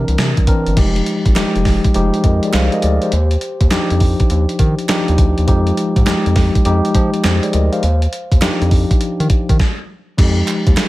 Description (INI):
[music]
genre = R&B, new jack swing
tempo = 102 BPM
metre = 4/4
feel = swing 65% on 16ths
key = F dorian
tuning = A4 = 440 Hz
[part]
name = mellow tine electric piano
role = accompaniment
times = 0.0-10.9 s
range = E3 to F5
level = -17 LUFS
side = left 1 dB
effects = medium stereo tremolo
[part]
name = round analog bass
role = bass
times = 0.0-10.8 s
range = F1 to F3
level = -16 LUFS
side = equal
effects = none
[part]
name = gated 80s digital drum machine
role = drums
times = 0.1-10.9 s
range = crash cymbal, hi-hat, kick drum, snare drum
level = -15 LUFS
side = equal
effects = gated reverb, gated reverb snare
[part]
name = group handclap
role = percussion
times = 1.4-10.9 s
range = none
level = -29 LUFS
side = right 7 dB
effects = none
[sound]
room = little or no reverb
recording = none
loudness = -12 LUFS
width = side -18 dB against mid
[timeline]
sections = 0.8-10.2 A section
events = stop 9.6-10.2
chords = 0.0 C9; 0.8 Fm9; 3.1 Ebmaj9; 5.5 Fm9; 7.8 Ebmaj9; 10.2 Fm9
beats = 0.18 | 0.77 1.36 1.95 2.53 | 3.12 3.71 4.30 4.89 | 5.48 6.06 6.65 7.24 | 7.83 8.42 9.01 9.59 | 10.18 10.77